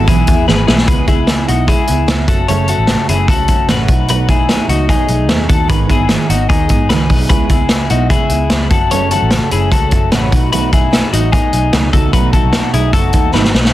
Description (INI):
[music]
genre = jangly indie pop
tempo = 149 BPM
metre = 4/4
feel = straight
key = unclear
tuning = A4 = 439 Hz
[part]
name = fingerpicked steel-string acoustic guitar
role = accompaniment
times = 0.0-13.7 s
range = F#2 to E4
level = -18 LUFS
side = right 7 dB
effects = none
[part]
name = phased string machine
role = sustained chords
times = 0.0-0.8 s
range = G#4 to B5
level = -31 LUFS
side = left 1 dB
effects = none
[part]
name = twelve-string electric guitar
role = arpeggios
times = 0.0-13.7 s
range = D#4 to C#5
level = -17 LUFS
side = left 6 dB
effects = slapback echo
[part]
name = vintage muted picked electric bass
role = bass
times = 0.0-13.7 s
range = F#1 to G#2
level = -17 LUFS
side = equal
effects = none
[part]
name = vintage drum kit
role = drums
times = 0.1-13.7 s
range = hi-hat, kick drum, snare drum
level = -13 LUFS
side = equal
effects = none
[sound]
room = small room ambience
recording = dense, heavily limited modern master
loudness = -10 LUFS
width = side -14 dB against mid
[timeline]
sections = 0.9-13.7 A section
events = drum fill 0.5-0.9, 13.3-13.7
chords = 0.0 E; 0.9 C#m7; 2.3 F#m; 3.9 B7; 5.7 G#m7; 7.3 C#m7; 8.7 F#m; 10.3 B7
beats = 0.07 0.47 | 0.88 1.28 1.68 2.08 | 2.48 2.88 3.29 3.69 | 4.09 4.49 4.89 5.30 | 5.70 6.10 6.50 6.90 | 7.31 7.71 8.11 8.51 | 8.92 9.32 9.72 10.12 | 10.53 10.93 11.33 11.73 | 12.13 12.54 12.94 13.34